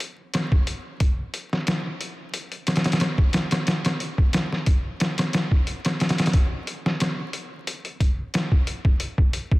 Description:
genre	trip hop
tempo	90 BPM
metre	4/4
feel	swing 54% on 16ths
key	none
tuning	none
part	trip hop sampler-style drum kit	drums	0.0-9.6 s	hi-hat, kick drum, snare drum	-21 LUFS	equal	none
room	light reverb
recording	dense, heavily limited modern master, vinyl crackle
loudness	-21 LUFS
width	side -21 dB against mid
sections	0.0-9.6 A section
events	none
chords	none

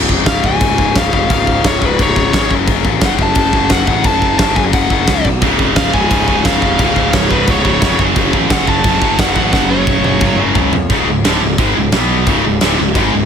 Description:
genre	heavy metal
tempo	175 BPM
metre	4/4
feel	straight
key	C# phrygian dominant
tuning	A4 = 440 Hz
part	tight distorted guitar	riff	0.0-13.3 s	C#2 to B3	-17 LUFS	left 11 dB	distortion
part	fuzz picked electric bass	bass	0.0-13.3 s	C#1 to E#2	-19 LUFS	equal	overdrive
part	big rock drum kit	drums	0.1-13.0 s	china cymbal, crash cymbal, kick drum, snare drum, toms	-15 LUFS	equal	none
part	high-gain lead guitar	melody	0.3-10.3 s	B4 to A5	-19 LUFS	right 1 dB	distortion, tape echo
part	scooped high-gain guitar	riff	5.4-13.3 s	C#2 to B3	-17 LUFS	right 14 dB	distortion
room	little or no reverb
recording	none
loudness	-11 LUFS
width	side -7 dB against mid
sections	0.0-10.9 A section; 10.9-13.3 B section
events	drum fill 9.5-10.9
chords	0.0 C#; 2.5 F#m; 5.4 C#; 8.0 F#5; 10.9 C#5; 11.9 B5; 12.3 C#5

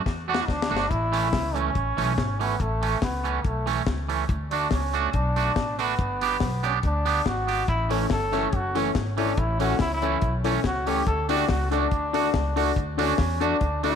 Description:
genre	ska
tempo	142 BPM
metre	4/4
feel	straight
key	A mixolydian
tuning	A4 = 440 Hz
part	upright bass	bass	0.1-14.0 s	F#1 to E2	-28 LUFS	equal	none
part	deep reggae drum kit	drums	0.1-13.9 s	hi-hat, kick drum, snare drum	-29 LUFS	left 3 dB	none
part	brilliant trombone	melody	0.3-14.0 s	A3 to A4	-28 LUFS	equal	none
part	twangy electric guitar	accompaniment	0.3-14.0 s	E3 to G4	-28 LUFS	right 10 dB	none
part	dark upright piano	stabs	7.9-14.0 s	C#4 to D5	-28 LUFS	left 10 dB	slapback echo
room	moderate echo chamber reverb, RT60 1.9 s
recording	1960s-style stereo with parts hard left and right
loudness	-22 LUFS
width	side -7 dB against mid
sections	0.0-14.0 A section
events	trombone solo 0.0-14.0; drum fill 0.1-0.9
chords	0.0 D; 0.9 A; 4.3 D; 6.0 G; 7.7 A; 11.1 D

